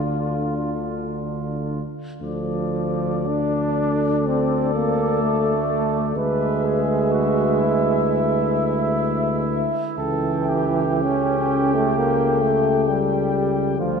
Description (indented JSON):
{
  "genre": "classical, hymn-like piece for brass band",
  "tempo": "62 BPM",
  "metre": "4/4",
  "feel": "uneven beats, rubato",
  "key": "D minor",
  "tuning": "A4 = 441 Hz",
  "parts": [
    { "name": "dark trumpet section", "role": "melody", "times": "0.0-14.0 s", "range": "F4 to G5", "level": "-28 LUFS", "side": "left 8 dB", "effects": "none" },
    { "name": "warm flugelhorn", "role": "second line", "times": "0.0-14.0 s", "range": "E4 to B4", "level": "-28 LUFS", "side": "right 6 dB", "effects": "none" },
    { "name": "clear euphonium", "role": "accompaniment", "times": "0.0-14.0 s", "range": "D4 to B4", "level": "-28 LUFS", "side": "left 2 dB", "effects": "none" },
    { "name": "warm trombone", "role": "accompaniment", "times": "0.0-14.0 s", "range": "D3 to D4", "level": "-23 LUFS", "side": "right 2 dB", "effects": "none" },
    { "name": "mellow tuba", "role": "bass", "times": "0.0-14.0 s", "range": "C#2 to D2", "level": "-25 LUFS", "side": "left 1 dB", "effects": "none" }
  ],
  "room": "wet church reverb, RT60 3.3 s",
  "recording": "none",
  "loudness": "-19 LUFS",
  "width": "side -6 dB against mid",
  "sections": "0.0-2.2 A section; 2.2-14.0 A section",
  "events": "none",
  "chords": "0.0 Dm; 6.2 E7/D; 10.0 A7/C#"
}